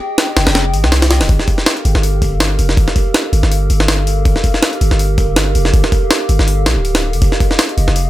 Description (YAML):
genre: drum and bass, jungle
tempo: 162 BPM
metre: 4/4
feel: swing 55% on 16ths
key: G minor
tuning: A4 = 440 Hz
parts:
  - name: warbly tape-like pad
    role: sustained chords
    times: 0.0-8.1 s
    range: G4 to G5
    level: -21 LUFS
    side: right 1 dB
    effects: chorus, built-in reverb
  - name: jungle sampler-style drum kit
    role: drums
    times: 0.2-8.1 s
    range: hi-hat, kick drum, snare drum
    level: -14 LUFS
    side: equal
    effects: small room reverb
  - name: long sustained 808-style bass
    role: bass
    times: 0.4-8.1 s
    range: D1 to C2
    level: -14 LUFS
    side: equal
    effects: none
room: little or no reverb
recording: none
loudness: -11 LUFS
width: side -15 dB against mid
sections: 0.0-8.1 A section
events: none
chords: 0.0 Fm9; 1.3 Gm9; 7.2 Fm9